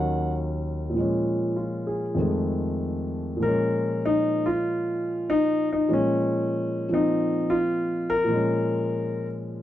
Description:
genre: solo jazz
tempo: 98 BPM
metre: 4/4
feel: swing 67% on 8ths, rubato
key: Bb minor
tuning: A4 = 436 Hz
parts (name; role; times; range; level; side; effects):
- warm concert grand piano; solo; 0.0-9.6 s; Eb2 to Gb5; -23 LUFS; left 1 dB; none
room: small room ambience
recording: dry, close 1970s-style studio recording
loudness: -23 LUFS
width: side -12 dB against mid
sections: 0.0-3.4 A section; 3.4-9.6 A section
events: none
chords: 0.0 Ebm7; 1.0 Bbm7; 2.2 F7#9; 3.4 Bbm7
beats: 0.35 | 0.96 1.57 2.19 2.81 | 3.44 4.06 4.67 5.28 | 5.89 6.50 7.10 7.70 | 8.29 8.89 9.50

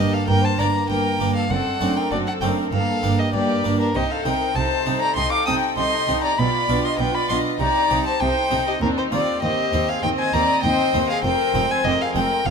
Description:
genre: classical, baroque-style concerto movement with solo episodes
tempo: 98 BPM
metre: 4/4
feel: straight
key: G minor, C minor from 8.8 s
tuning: A4 = 442 Hz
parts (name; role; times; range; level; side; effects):
- warm violin; melody; 0.0-12.5 s; Bb4 to Eb6; -23 LUFS; left 2 dB; none
- warm chamber violin section; second line; 0.0-12.5 s; D4 to G5; -26 LUFS; left 2 dB; none
- clear studio viola section; accompaniment; 0.0-12.5 s; Bb3 to F4; -28 LUFS; right 2 dB; none
- harpsichord; accompaniment; 0.0-12.5 s; Eb2 to F4; -26 LUFS; right 1 dB; none
- rich chamber cello section; bass; 0.0-12.5 s; Eb2 to C3; -28 LUFS; right 4 dB; none
- rich chamber double bass section; bass; 0.0-12.5 s; F1 to Eb2; -28 LUFS; right 4 dB; none
- dark studio violin section; melody; 0.3-12.5 s; G4 to Eb5; -32 LUFS; left 5 dB; none
room: moderate recital hall reverb, RT60 1.5 s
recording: close, detailed microphones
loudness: -18 LUFS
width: side -6 dB against mid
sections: 0.0-12.5 A section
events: none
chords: 0.0 Gm; 1.5 D7/F#; 2.7 Gm; 3.9 Cm; 6.4 G7/B; 7.6 Cm; 8.8 Cm/Eb; 11.2 Fm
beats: 0.28 0.89 | 1.51 2.12 2.73 3.34 | 3.95 4.56 5.17 5.77 | 6.38 6.99 7.60 8.21 | 8.81 9.43 10.03 10.64 | 11.25 11.85 12.46

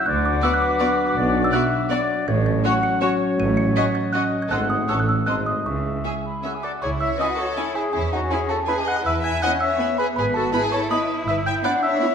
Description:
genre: cinematic, playful, whimsical film cue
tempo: 161 BPM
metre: 3/4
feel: straight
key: C# minor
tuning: A4 = 440 Hz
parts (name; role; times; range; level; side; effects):
- music box; melody; 0.0-12.1 s; F#5 to E7; -27 LUFS; right 2 dB; none
- flute section; second line; 0.0-6.5 s; B#5 to E6; -30 LUFS; left 4 dB; none
- mellow cor anglais; second line; 0.0-6.8 s; E4 to A4; -30 LUFS; left 3 dB; none
- warm clarinet; second line; 0.0-12.1 s; F#4 to G#5; -25 LUFS; left 2 dB; none
- dark French horn section; sustained chords; 0.0-6.6 s; F#3 to E4; -26 LUFS; left 2 dB; none
- dark chamber double bass section; bass; 0.1-11.6 s; G1 to E2; -28 LUFS; right 3 dB; none
- warm chamber cello section; bass; 0.1-12.1 s; G#2 to G#4; -28 LUFS; right 1 dB; none
- warm tuba; bass; 0.1-6.0 s; G#1 to D2; -29 LUFS; right 2 dB; none
- rich chamber violin section; melody; 0.4-12.1 s; C#5 to B5; -34 LUFS; left 2 dB; none
- rich studio violin section; second line; 0.4-12.1 s; D#4 to E5; -29 LUFS; left 1 dB; none
- warm symphonic viola section; accompaniment; 0.4-12.1 s; B3 to E4; -31 LUFS; right 1 dB; none
room: wet scoring stage reverb, RT60 1.4 s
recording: minimal, uncompressed stereo recording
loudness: -19 LUFS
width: side -7 dB against mid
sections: 0.0-6.8 A section; 6.8-12.1 B section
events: none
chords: 0.1 Bm/D; 1.2 Bm; 2.3 F#m/A; 4.5 G#7b9; 4.9 A; 5.3 G#7b9; 5.7 C#m; 7.9 C#m/E; 9.1 E; 10.2 E/G#; 11.3 Em/G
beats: | 0.07 0.43 0.80 | 1.17 1.54 1.91 | 2.28 2.65 3.02 | 3.39 3.77 4.14 | 4.51 4.89 5.27 | 5.66 6.05 6.43 | 6.82 7.19 7.57 | 7.94 8.31 8.68 | 9.06 9.43 9.80 | 10.17 10.54 10.91 | 11.27 11.64 12.01

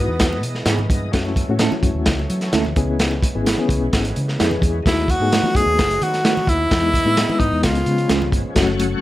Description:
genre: uptempo 1960s-style soul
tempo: 129 BPM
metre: 4/4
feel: straight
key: unclear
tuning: A4 = 440 Hz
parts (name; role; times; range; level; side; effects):
- breathy tenor saxophone; melody; 0.0-0.5, 4.9-8.3 s; B3 to G#4; -20 LUFS; equal; plate reverb
- bright reed electric piano; accompaniment; 0.0-9.0 s; F#3 to B4; -23 LUFS; left 4 dB; fast tremolo, plate reverb
- overdriven tonewheel organ; sustained chords; 0.0-9.0 s; E3 to F#5; -31 LUFS; equal; slow rotary speaker, chorus vibrato, plate reverb
- vintage muted fingered electric bass; bass; 0.0-8.9 s; F#1 to F#3; -23 LUFS; equal; none
- crunchy breakbeat drum kit; drums; 0.2-8.9 s; hi-hat, kick drum, snare drum; -20 LUFS; equal; none
- congas; percussion; 0.2-8.9 s; none; -33 LUFS; right 1 dB; none
- mellow electric guitar; stabs; 0.7-8.2 s; G#3 to B4; -24 LUFS; right 6 dB; warbly pitch drift, slapback echo, plate reverb
room: light reverb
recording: none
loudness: -16 LUFS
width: side -15 dB against mid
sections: 0.0-8.6 A section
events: none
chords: 0.0 Emaj7; 1.1 F#m7; 2.8 C#m7; 4.8 B7/D#; 6.7 Emaj7; 7.6 C#7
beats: 0.21 0.67 | 1.14 1.60 2.07 2.53 | 2.99 3.46 3.92 4.39 | 4.85 5.31 5.78 6.24 | 6.71 7.17 7.63 8.10 | 8.56

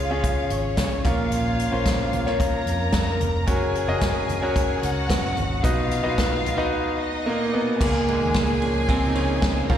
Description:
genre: piano-driven pop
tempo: 111 BPM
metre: 4/4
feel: straight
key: Db major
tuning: A4 = 440 Hz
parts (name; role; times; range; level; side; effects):
- warm studio violin section; second line; 0.0-9.8 s; Db4 to Bb5; -28 LUFS; left 1 dB; ping-pong delay, slapback echo
- clear baby grand piano; accompaniment; 0.0-9.8 s; Ab2 to Eb5; -24 LUFS; equal; none
- vintage muted fingered electric bass; bass; 0.0-9.8 s; F1 to Gb2; -28 LUFS; equal; none
- unplugged drum kit; drums; 0.2-9.8 s; crash cymbal, hi-hat, kick drum, ride cymbal, snare drum, toms; -25 LUFS; equal; none
room: light reverb, studio reverb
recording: live gig heard through the venue's PA, recital hall reverb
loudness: -20 LUFS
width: side -10 dB against mid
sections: 0.0-7.8 A section; 7.8-9.8 B section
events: grand piano solo 7.8-9.8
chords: 0.0 Db; 1.0 Bbm; 3.5 Gb; 5.6 Cb; 7.8 Db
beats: 0.24 0.78 | 1.32 1.86 2.40 2.94 | 3.48 4.02 4.56 5.10 | 5.64 6.18 6.72 7.26 | 7.80 8.35 8.89 9.43

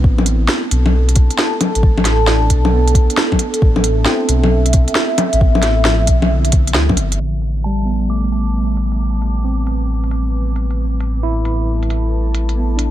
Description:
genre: future garage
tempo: 134 BPM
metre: 4/4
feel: swing 66% on 16ths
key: A minor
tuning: A4 = 440 Hz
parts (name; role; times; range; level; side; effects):
- tine electric piano; accompaniment; 0.0-12.9 s; D3 to E4; -23 LUFS; right 2 dB; medium stereo tremolo, vintage 12-bit sampler grit, sidechain pumping, dub echo
- dark analog pad; sustained chords; 0.0-12.9 s; A4 to A5; -22 LUFS; equal; chorus, phaser, sidechain pumping
- dark detuned saw bass; bass; 0.0-12.9 s; G1 to D2; -16 LUFS; equal; sidechain pumping
- electronic kick drum; drums; 0.0-7.0 s; none; -14 LUFS; equal; none
- organic electronic drum kit; drums; 0.2-12.9 s; bongos, hi-hat, snare drum; -18 LUFS; left 1 dB; none
- soft synth bell; melody; 7.6-8.7 s; A5 to D6; -34 LUFS; right 1 dB; chorus, dub echo
room: light reverb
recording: low-pass filter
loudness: -13 LUFS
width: side -12 dB against mid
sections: 0.0-7.2 A section; 7.2-12.9 B section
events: filter sweep on analog synth pad 7.2-12.9; filter sweep 7.2-12.9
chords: 0.0 F/A; 7.2 Am9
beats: | 0.04 0.49 0.93 1.38 | 1.83 2.28 2.73 3.17 | 3.62 4.07 4.52 4.96 | 5.41 5.86 6.31 6.75 | 7.20 7.65 8.10 8.55 | 8.99 9.44 9.89 10.34 | 10.78 11.23 11.68 12.13 | 12.57

